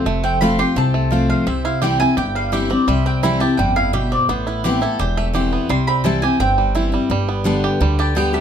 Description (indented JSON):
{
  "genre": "bluegrass",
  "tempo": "170 BPM",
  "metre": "4/4",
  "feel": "straight",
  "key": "C major",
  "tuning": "A4 = 440 Hz",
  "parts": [
    { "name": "picked steel-string acoustic guitar", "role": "accompaniment", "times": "0.0-8.4 s", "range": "E2 to G4", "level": "-20 LUFS", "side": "left 3 dB", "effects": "none" },
    { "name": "bluegrass banjo", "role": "arpeggios", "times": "0.0-8.4 s", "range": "G3 to G4", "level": "-24 LUFS", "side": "right 7 dB", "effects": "none" },
    { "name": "upright bass", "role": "bass", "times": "0.1-8.4 s", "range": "E1 to D2", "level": "-21 LUFS", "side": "equal", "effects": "none" },
    { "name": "mandolin", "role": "melody", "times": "0.2-8.4 s", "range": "G4 to C6", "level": "-21 LUFS", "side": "right 2 dB", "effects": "none" }
  ],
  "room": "little or no reverb",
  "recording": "close, detailed microphones",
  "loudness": "-15 LUFS",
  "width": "side -8 dB against mid",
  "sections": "0.0-7.1 A section; 7.1-8.4 A section",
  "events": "none",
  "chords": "0.0 F; 1.5 C; 4.3 Amadd9; 5.7 C; 7.1 G"
}